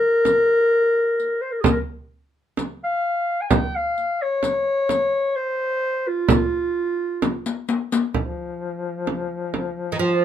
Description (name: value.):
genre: Turkish makam ensemble.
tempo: 129 BPM (eighths).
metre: 10/8.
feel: straight.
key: F makam ussak.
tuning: A4 = 440 Hz.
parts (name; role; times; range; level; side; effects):
mellow clarinet; melody; 0.0-10.2 s; F4 to Ab5; -20 LUFS; left 1 dB; none.
frame drum; percussion; 0.3-9.8 s; none; -21 LUFS; right 3 dB; none.
riq; percussion; 0.3-8.1 s; none; -25 LUFS; left 6 dB; none.
mellow duduk; drone; 8.2-10.2 s; F3; -28 LUFS; left 5 dB; none.
oud; second line; 9.9-10.2 s; Eb3 to F3; -18 LUFS; right 4 dB; none.
room: moderate small room reverb, RT60 0.6 s.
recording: minimal, uncompressed stereo recording.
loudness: -20 LUFS.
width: side -10 dB against mid.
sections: 0.0-8.1 A section; 8.1-10.2 B section.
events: drum fill 7.2-8.1.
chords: none.